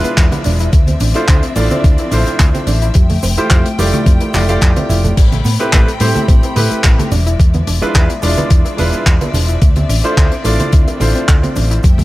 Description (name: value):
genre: nu-disco, nu disco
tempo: 108 BPM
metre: 4/4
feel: swing 54% on 16ths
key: unclear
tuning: A4 = 440 Hz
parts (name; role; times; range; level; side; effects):
- bright grand piano; accompaniment; 0.0-11.8 s; G#3 to D5; -19 LUFS; right 1 dB; tape echo
- rich studio string section; sustained chords; 0.0-12.0 s; F3 to B5; -24 LUFS; left 2 dB; sidechain pumping
- analog pluck; arpeggios; 0.0-12.0 s; G3 to F4; -24 LUFS; equal; chorus, sidechain pumping, tape echo
- hollow-body short-scale fingered electric bass; bass; 0.0-12.0 s; E1 to A2; -15 LUFS; equal; sidechain pumping
- damped 70s drum kit; drums; 0.0-12.0 s; crash cymbal, handclaps, hi-hat; -21 LUFS; left 2 dB; none
- egg shaker, bongos and congas; percussion; 0.0-12.0 s; none; -23 LUFS; right 2 dB; none
- electronic kick drum; drums; 0.2-12.0 s; none; -10 LUFS; equal; none
room: small room reverb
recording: none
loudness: -10 LUFS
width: side -18 dB against mid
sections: 0.0-12.0 A section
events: none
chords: 0.0 E7b9; 0.7 Dm9; 3.0 Fmaj9; 5.2 Am9; 7.1 E7b9; 9.6 Dm9